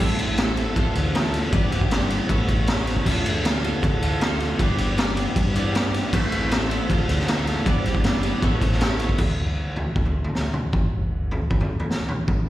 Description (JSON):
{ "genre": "indie rock", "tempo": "156 BPM", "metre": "4/4", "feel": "straight", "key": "D dorian", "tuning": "A4 = 439 Hz", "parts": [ { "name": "twelve-string electric guitar", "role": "riff", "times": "0.0-9.2 s", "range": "D3 to C#5", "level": "-26 LUFS", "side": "equal", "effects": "double-tracked left and right, slapback echo" }, { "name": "growling fingered electric bass", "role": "bass", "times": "0.0-12.5 s", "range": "G1 to D3", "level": "-27 LUFS", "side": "equal", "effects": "overdrive" }, { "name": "raw garage drum kit", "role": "drums", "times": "0.0-12.4 s", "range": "crash cymbal, kick drum, ride cymbal, snare drum, toms", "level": "-22 LUFS", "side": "equal", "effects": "none" } ], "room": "studio reverb", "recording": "live gig heard through the venue's PA, recital hall reverb", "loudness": "-20 LUFS", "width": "side -14 dB against mid", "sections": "0.0-9.2 A section; 9.2-12.5 B section", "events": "none", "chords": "0.0 Am; 0.8 Dmadd9; 1.5 G; 2.3 Aadd9; 3.1 Dmadd9; 4.6 G; 6.1 Am; 6.9 Dmadd9; 7.7 G; 8.4 Aadd9; 9.2 N.C.", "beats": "0.38 0.76 1.14 | 1.52 1.91 2.29 2.68 | 3.06 3.44 3.83 4.21 | 4.59 4.98 5.36 5.75 | 6.13 6.51 6.89 7.28 | 7.66 8.05 8.43 8.81 | 9.20 9.58 9.97 10.35 | 10.74 11.12 11.51 11.89 | 12.28" }